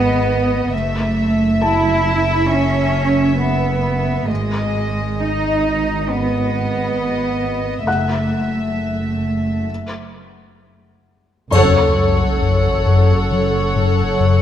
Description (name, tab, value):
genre	cinematic, suspense film score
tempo	67 BPM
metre	4/4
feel	straight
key	unclear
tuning	A4 = 440 Hz
part	warm symphonic violin section	melody	0.0-14.4 s	D#5 to F#5	-26 LUFS	left 4 dB	none
part	dark symphonic double bass section	bass	0.0-14.4 s	F#1 to G#1	-22 LUFS	right 2 dB	none
part	warm studio cello section	bass	0.0-14.4 s	F#2 to E4	-19 LUFS	right 2 dB	none
part	felt-muted upright piano	texture	0.0-14.4 s	C#5 to F#6	-26 LUFS	left 3 dB	none
part	rich studio violin section	second line	11.5-14.4 s	C#5	-20 LUFS	left 2 dB	none
part	dark symphonic viola section	accompaniment	11.5-14.4 s	A4	-20 LUFS	right 2 dB	none
part	smooth gliding synth bass	riff	11.5-14.4 s	F#2 to F#3	-16 LUFS	left 3 dB	none
part	triangle	percussion	11.5-13.3 s	none	-37 LUFS	left 3 dB	none
part	sub drop	sound effects	11.5-14.4 s	none	-24 LUFS	left 1 dB	none
room	moderate scoring stage reverb, RT60 2.0 s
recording	dark, warm production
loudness	-15 LUFS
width	side -10 dB against mid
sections	0.0-11.5 A section; 11.5-14.4 B section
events	break 9.7-11.5; band accent 11.5-12.4; impact 11.5-14.4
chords	0.0 G#m; 0.7 F#m7; 4.3 G#m; 7.9 F#m7; 9.7 N.C.; 11.5 F#m